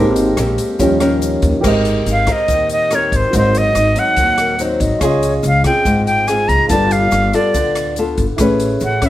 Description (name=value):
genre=bossa nova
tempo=142 BPM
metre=4/4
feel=straight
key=Ab major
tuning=A4 = 440 Hz
part: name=dark grand piano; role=accompaniment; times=0.0-9.1 s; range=F3 to C6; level=-20 LUFS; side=right 2 dB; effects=none
part: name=nylon-string guitar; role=accompaniment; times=0.0-9.1 s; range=Ab2 to B4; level=-18 LUFS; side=left 2 dB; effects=none
part: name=upright bass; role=bass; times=0.0-9.0 s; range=G1 to Eb2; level=-19 LUFS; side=equal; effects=none
part: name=swinging big-band drum kit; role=drums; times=0.2-9.1 s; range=crash cymbal, hi-hat, kick drum, rim click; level=-23 LUFS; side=equal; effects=none
part: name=egg shaker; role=percussion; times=0.2-9.1 s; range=none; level=-34 LUFS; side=left 5 dB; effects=none
part: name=breathy bright concert flute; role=melody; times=2.1-9.1 s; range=C5 to Bb5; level=-15 LUFS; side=equal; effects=none
part: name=alto flute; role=second line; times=4.4-5.3 s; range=Bb4 to Eb5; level=-21 LUFS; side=left 3 dB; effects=none
room=moderate large studio reverb, RT60 0.9 s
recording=none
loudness=-12 LUFS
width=side -14 dB against mid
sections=0.0-1.6 A section; 1.6-9.1 B section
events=grand piano solo 0.0-1.6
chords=0.0 Abmaj9; 0.8 Eb7; 1.6 Abmaj9; 3.3 Ab7; 5.0 Dbmaj7; 6.7 G9; 8.4 Amaj9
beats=0.38 0.80 1.22 | 1.64 2.06 2.48 2.90 | 3.32 3.75 4.17 4.59 | 5.01 5.43 5.85 6.28 | 6.70 7.12 7.54 7.96 | 8.39 8.81